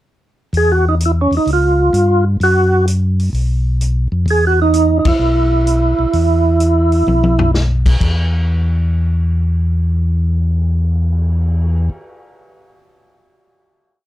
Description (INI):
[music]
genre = soul jazz organ trio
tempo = 128 BPM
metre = 4/4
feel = swing 68% on 8ths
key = unclear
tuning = A4 = 443 Hz
[part]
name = mellow tonewheel organ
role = bass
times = 0.5-11.9 s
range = B1 to G2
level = -14 LUFS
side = equal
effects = slow rotary speaker
[part]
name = vintage drum kit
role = drums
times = 0.5-11.7 s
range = crash cymbal, cymbal swell, hi-hat, kick drum, ride cymbal, snare drum, toms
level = -21 LUFS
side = left 2 dB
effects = none
[part]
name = percussive tonewheel organ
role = melody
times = 0.6-7.5 s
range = C#4 to G#4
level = -14 LUFS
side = right 2 dB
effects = slow rotary speaker, overdrive, chorus vibrato
[sound]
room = light reverb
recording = dark, warm production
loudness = -12 LUFS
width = side -14 dB against mid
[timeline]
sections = 0.5-8.0 A section; 8.0-11.8 final note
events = band accent 5.0; drum fill 7.1-7.5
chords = 0.5 Emaj13; 1.5 C#; 2.4 N.C.; 4.3 E5; 8.0 N.C.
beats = | 0.54 1.01 1.48 1.94 | 2.41 2.88 3.34 3.81 | 4.28 4.74 5.21 5.68 | 6.14 6.61 7.08 7.54 | 8.01 8.48 8.95 9.41 | 9.88 10.35 10.82 11.29